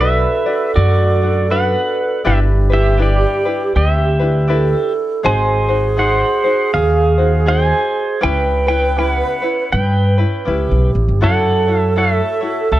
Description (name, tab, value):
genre	Hawaiian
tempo	80 BPM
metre	4/4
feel	swing 62% on 8ths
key	B minor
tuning	A4 = 443 Hz
part	pedal steel guitar	melody	0.0-12.8 s	F#4 to G#5	-17 LUFS	right 1 dB	none
part	mellow wooden-headed alto flute	second line	0.0-12.8 s	G4 to B4	-21 LUFS	right 5 dB	none
part	tenor ukulele	accompaniment	0.0-12.8 s	C#4 to D5	-22 LUFS	left 5 dB	none
part	upright bass	bass	0.0-12.8 s	G1 to G2	-15 LUFS	equal	none
room	little or no reverb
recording	dry, close 1970s-style studio recording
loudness	-13 LUFS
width	side -14 dB against mid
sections	0.0-12.8 A section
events	none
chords	0.0 Bm; 2.3 G6; 5.2 G#7; 8.2 C#m7b5; 11.2 F#m7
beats	0.01 0.76 1.50 | 2.25 3.00 3.75 4.50 | 5.25 6.00 6.74 7.49 | 8.24 8.98 9.73 10.48 | 11.22 11.97 12.71